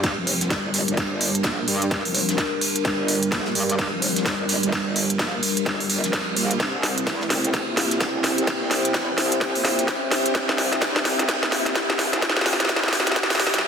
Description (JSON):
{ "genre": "bass house", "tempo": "128 BPM", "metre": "4/4", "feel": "swing 61% on 16ths", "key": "G dorian", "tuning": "A4 = 443 Hz", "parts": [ { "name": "dark analog pad", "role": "sustained chords", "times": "0.0-13.7 s", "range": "G3 to E5", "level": "-29 LUFS", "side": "equal", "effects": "chorus, phaser, sidechain pumping" }, { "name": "metallic wobble bass", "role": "bass", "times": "0.0-12.9 s", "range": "F1 to G2", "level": "-28 LUFS", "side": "equal", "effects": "chorus, tube saturation, sidechain pumping, high-pass filter" }, { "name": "electronic kick drum", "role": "drums", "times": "0.0-13.3 s", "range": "none", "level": "-30 LUFS", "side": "equal", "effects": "high-pass filter on kick, high-pass filter on room" }, { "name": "garage drum kit", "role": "drums", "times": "0.0-13.7 s", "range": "hi-hat, snare drum", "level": "-22 LUFS", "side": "equal", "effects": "none" }, { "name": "soft brush drum kit", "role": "drums", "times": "0.0-13.6 s", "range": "ride cymbal, snare drum", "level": "-32 LUFS", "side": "right 4 dB", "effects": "high-pass filter on cymbals, soft clipping on snare, high-pass filter on snare, high-pass filter on room" }, { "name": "riser and swell", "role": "sound effects", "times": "2.5-13.7 s", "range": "none", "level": "-35 LUFS", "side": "equal", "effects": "none" }, { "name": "warbly tape-like pad", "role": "texture", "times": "0.0-13.6 s", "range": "D4 to G5", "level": "-30 LUFS", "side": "left 1 dB", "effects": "chorus, built-in reverb, sidechain pumping" } ], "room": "moderate digital room reverb, RT60 1.1 s, digital ambience", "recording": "dense, heavily limited modern master, high-pass filter", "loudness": "-20 LUFS", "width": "side -7 dB against mid", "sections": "0.0-13.7 A section", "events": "build-up 0.0-13.7; drum fill 0.0-13.6; swell 13.2-13.7", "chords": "0.0 Gm; 6.6 C" }